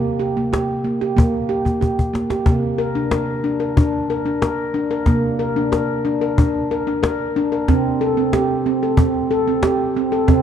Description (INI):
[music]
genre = world meditative, meditative tuned percussion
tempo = 92 BPM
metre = 4/4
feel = straight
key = unclear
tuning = A4 = 440 Hz
[part]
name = handpan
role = arpeggios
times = 0.0-10.4 s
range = C3 to Bb4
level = -18 LUFS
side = equal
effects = none
[part]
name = cajon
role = percussion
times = 0.2-10.4 s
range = none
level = -19 LUFS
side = left 1 dB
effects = none
[sound]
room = moderate church reverb, RT60 2.8 s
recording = dark, warm production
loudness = -17 LUFS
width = side -9 dB against mid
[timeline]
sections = 0.0-10.4 A section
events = drum fill 1.7-2.5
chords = 0.0 Gmadd11/C; 2.5 Bb/C; 7.7 C5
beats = 0.52 1.17 1.82 | 2.47 3.12 3.77 4.42 | 5.07 5.72 6.38 7.03 | 7.68 8.33 8.98 9.63 | 10.28